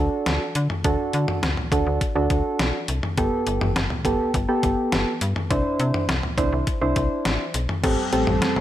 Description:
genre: synth-pop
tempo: 103 BPM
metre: 4/4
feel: straight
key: D mixolydian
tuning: A4 = 435 Hz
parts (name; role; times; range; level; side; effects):
- soft electric-piano-like synth keys; accompaniment; 0.0-8.6 s; B3 to C5; -24 LUFS; right 1 dB; chorus
- slap-like FM bass; bass; 0.0-8.6 s; G1 to D3; -24 LUFS; left 1 dB; none
- detuned 8-bit digital drum machine; drums; 0.3-8.6 s; crash cymbal, hi-hat, kick drum, snare drum, toms; -25 LUFS; left 1 dB; overdrive
- string machine, full ensemble; sustained chords; 7.8-8.6 s; G3 to C4; -27 LUFS; equal; ensemble chorus
room: moderate recital hall reverb, RT60 1.5 s, digital ambience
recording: none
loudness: -20 LUFS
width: side -12 dB against mid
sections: 0.0-7.8 A section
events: none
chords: 0.0 D; 3.2 Gadd9; 5.5 Cadd9; 7.8 Am7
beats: 0.26 | 0.84 1.43 2.01 2.59 | 3.17 3.76 4.34 4.92 | 5.50 6.09 6.67 7.25 | 7.84 8.42

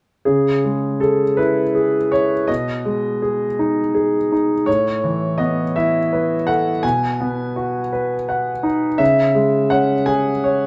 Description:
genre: neoclassical minimalist piano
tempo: 55 BPM (dotted quarters)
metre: 6/8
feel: rubato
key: C# minor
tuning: A4 = 439 Hz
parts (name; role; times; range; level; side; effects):
- clear concert grand piano; solo; 0.3-10.7 s; A2 to G#5; -18 LUFS; equal; none
room: moderate stone room reverb, RT60 1.1 s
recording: band playing live in one room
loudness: -19 LUFS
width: mono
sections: 0.3-10.7 A section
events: none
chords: 0.3 C#m; 2.5 G#m/B; 4.7 Aadd9; 6.8 B; 9.0 C#m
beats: | 0.26 1.38 | 2.48 3.59 | 4.67 5.76 | 6.83 7.92 | 9.00 10.08

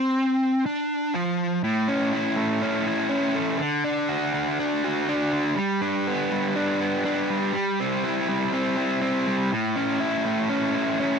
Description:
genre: rock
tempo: 122 BPM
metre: 4/4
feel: straight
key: A mixolydian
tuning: A4 = 441 Hz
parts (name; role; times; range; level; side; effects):
- overdriven electric guitar; solo; 0.0-11.2 s; A2 to F#4; -22 LUFS; equal; none
room: light reverb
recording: dry, close 1970s-style studio recording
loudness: -22 LUFS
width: side -6 dB against mid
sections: 0.0-1.6 A section; 1.6-11.2 B section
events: none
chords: 0.0 Csus24; 1.6 A; 3.6 D; 5.6 G; 7.5 C/G; 9.5 A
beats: 0.17 0.66 1.15 | 1.64 2.13 2.62 3.11 | 3.60 4.10 4.59 5.08 | 5.58 6.07 6.56 7.05 | 7.55 8.04 8.54 9.03 | 9.53 10.02 10.52 11.01

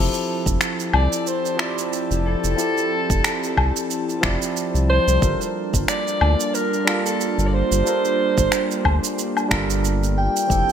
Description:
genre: sunset chillout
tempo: 91 BPM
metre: 4/4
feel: swing 56% on 16ths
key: unclear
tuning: A4 = 441 Hz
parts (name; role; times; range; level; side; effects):
- barky tine electric piano; accompaniment; 0.0-10.7 s; F3 to D5; -26 LUFS; moving between left 7 dB and right 5 dB; overdrive, auto-pan, digital delay
- airy breathy pad; sustained chords; 0.4-10.7 s; F3 to A5; -28 LUFS; equal; chorus
- round analog bass; bass; 0.0-10.6 s; F1 to D2; -20 LUFS; equal; none
- electronic shaker, finger snaps and woodblock; drums; 0.1-10.7 s; none; -24 LUFS; left 1 dB; gated reverb
- electronic kick drum; drums; 0.5-10.6 s; none; -24 LUFS; equal; none
- dark soprano saxophone; melody; 0.9-10.7 s; A4 to G5; -23 LUFS; right 2 dB; digital delay
room: moderate plate reverb, RT60 2.5 s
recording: bright 1980s-style digital production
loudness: -18 LUFS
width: side -8 dB against mid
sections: 0.0-10.7 A section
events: none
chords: 0.0 Fmaj9; 5.2 Gm9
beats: 0.61 1.27 1.93 | 2.58 3.24 3.90 4.56 | 5.22 5.88 6.54 7.20 | 7.86 8.52 9.18 9.84 | 10.50

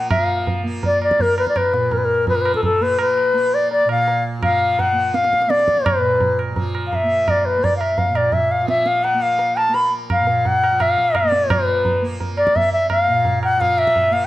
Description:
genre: indian classical, Hindustani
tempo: 169 BPM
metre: 4/4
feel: straight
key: Bb raga puriya dhanashri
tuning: A4 = 443 Hz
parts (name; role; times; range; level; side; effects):
- bright reedy bansuri; melody; 0.0-14.3 s; A4 to Cb6; -16 LUFS; left 1 dB; none
- tanpura; drone; 0.0-14.3 s; Bb2 to Bb3; -27 LUFS; right 2 dB; none
- tabla; percussion; 0.1-14.1 s; none; -23 LUFS; right 2 dB; none
room: light reverb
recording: none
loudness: -15 LUFS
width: side -15 dB against mid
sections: 0.1-11.5 A section; 11.5-14.3 B section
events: speeding up 0.0-14.3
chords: none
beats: | 0.11 0.47 0.83 1.19 | 1.55 1.92 2.27 2.63 | 3.00 3.35 3.71 4.07 | 4.43 4.79 5.14 5.50 | 5.86 6.21 6.57 6.92 | 7.28 7.63 7.99 8.34 | 8.69 9.05 9.40 9.75 | 10.10 10.46 10.81 11.16 | 11.51 11.86 12.21 12.56 | 12.91 13.26 13.60 13.95

